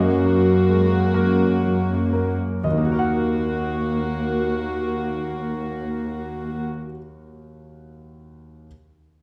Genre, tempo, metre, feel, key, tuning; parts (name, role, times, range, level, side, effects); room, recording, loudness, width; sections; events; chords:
cinematic, emotional film score for orchestra; 40 BPM (dotted quarters); 6/8; rubato; Eb minor; A4 = 440 Hz
clear concert grand piano; accompaniment; 0.0-8.7 s; Eb2 to Gb5; -29 LUFS; equal
warm studio viola section; accompaniment; 0.0-6.6 s; Bb3 to Gb4; -26 LUFS; equal
concert harp; arpeggios; 0.0-7.0 s; Gb2 to Gb5; -30 LUFS; equal
dark studio cello section; bass; 0.0-6.6 s; Eb2 to Gb2; -28 LUFS; equal
wet recital hall reverb, RT60 1.5 s; -22 LUFS; mono
0.0-2.6 A section; 2.6-8.6 B section
slowing down 0.0-2.6
0.0 Ebm/Gb; 2.6 Ebm